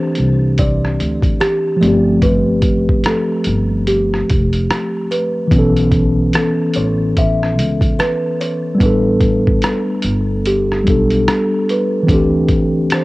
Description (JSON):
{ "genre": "lo-fi hip hop", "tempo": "73 BPM", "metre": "4/4", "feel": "swing 63% on 16ths", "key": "A minor", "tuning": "A4 = 439 Hz", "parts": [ { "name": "kalimba", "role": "melody", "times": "0.0-13.0 s", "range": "G4 to E5", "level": "-20 LUFS", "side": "equal", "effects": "none" }, { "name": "mellow tine electric piano", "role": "accompaniment", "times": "0.0-13.0 s", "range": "E3 to A4", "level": "-16 LUFS", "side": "equal", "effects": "medium stereo tremolo, cassette tape" }, { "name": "upright bass", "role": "bass", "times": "0.2-12.9 s", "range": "F1 to D2", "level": "-19 LUFS", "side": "equal", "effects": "none" }, { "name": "boom bap sampler-style drum kit", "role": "drums", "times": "0.2-13.0 s", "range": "hi-hat, kick drum, rim click", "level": "-18 LUFS", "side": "equal", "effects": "cassette tape" } ], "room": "light reverb", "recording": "home recording on cassette", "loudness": "-13 LUFS", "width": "side -20 dB against mid", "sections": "0.0-13.0 A section", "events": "none", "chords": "0.0 D9sus4; 1.8 G9sus4; 5.5 B9sus4; 8.8 A9sus4; 12.1 D9sus4" }